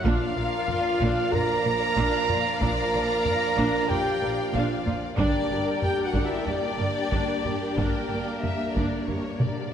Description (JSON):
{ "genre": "cinematic, epic orchestral film score", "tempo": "93 BPM", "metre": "4/4", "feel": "straight", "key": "unclear", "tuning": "A4 = 440 Hz", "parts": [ { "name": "rich symphonic violin section", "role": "melody", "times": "0.0-9.7 s", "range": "Bb4 to Bb5", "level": "-33 LUFS", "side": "left 3 dB", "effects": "none" }, { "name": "warm symphonic viola section", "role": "accompaniment", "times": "0.0-9.5 s", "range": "D4 to Bb4", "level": "-33 LUFS", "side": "right 1 dB", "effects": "none" }, { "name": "mellow French horn section", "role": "sustained chords", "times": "0.0-9.7 s", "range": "Bb3 to Bb4", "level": "-29 LUFS", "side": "equal", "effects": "none" }, { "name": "rich symphonic string section", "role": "sustained chords", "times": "0.0-9.7 s", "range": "Bb3 to D5", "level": "-34 LUFS", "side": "equal", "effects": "none" }, { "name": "warm trumpet section", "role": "stabs", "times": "0.0-9.7 s", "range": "Bb4 to Bb5", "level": "-32 LUFS", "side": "right 3 dB", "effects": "none" }, { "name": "dark symphonic cello section", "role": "bass", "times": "0.0-9.5 s", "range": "G2 to Bb2", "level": "-32 LUFS", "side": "right 2 dB", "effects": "none" }, { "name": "dark symphonic double bass section", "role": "bass", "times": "0.0-9.5 s", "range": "G1 to Bb1", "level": "-34 LUFS", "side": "right 3 dB", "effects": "none" }, { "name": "taiko ensemble", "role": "drums", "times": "0.0-9.7 s", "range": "none", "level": "-30 LUFS", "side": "equal", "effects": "none" }, { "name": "warm symphonic violin section", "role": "second line", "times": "0.1-9.7 s", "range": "C#5 to G5", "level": "-34 LUFS", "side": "left 4 dB", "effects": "none" }, { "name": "dark trombone section", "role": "sustained chords", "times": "0.1-9.7 s", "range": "F3 to D4", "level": "-36 LUFS", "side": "right 1 dB", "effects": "none" } ], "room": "wet concert hall reverb, RT60 2.2 s", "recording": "none", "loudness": "-23 LUFS", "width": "side -8 dB against mid", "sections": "0.0-9.7 A section", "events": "drum fill 9.4-9.7", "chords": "0.0 Bb; 5.2 Gm" }